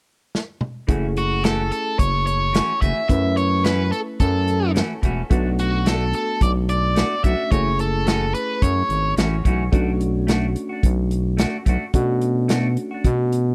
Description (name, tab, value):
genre	straight-eighth soul blues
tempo	108 BPM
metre	4/4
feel	swing 54% on 16ths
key	F# minor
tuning	A4 = 440 Hz
part	warm soul drum kit	drums	0.3-13.5 s	hi-hat, kick drum, snare drum, toms	-22 LUFS	equal	none
part	barky reed electric piano	accompaniment	0.9-13.5 s	A3 to B4	-30 LUFS	equal	overdrive
part	clean electric guitar	stabs	0.9-13.1 s	E3 to F#4	-31 LUFS	equal	none
part	growling FM bass	bass	0.9-13.5 s	E1 to B2	-24 LUFS	equal	none
part	biting overdriven guitar	melody	1.2-9.1 s	F#4 to E5	-26 LUFS	equal	tape echo
room	studio reverb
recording	none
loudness	-21 LUFS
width	mono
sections	0.9-13.5 A section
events	drum fill 0.3-0.9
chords	0.0 N.C.; 0.9 F#m7; 5.3 Bm7; 7.5 F#m7; 9.7 Bm7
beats	0.33 | 0.88 1.44 1.99 2.54 | 3.09 3.64 4.20 4.75 | 5.30 5.85 6.41 6.96 | 7.51 8.06 8.62 9.17 | 9.72 10.28 10.83 11.38 | 11.94 12.49 13.04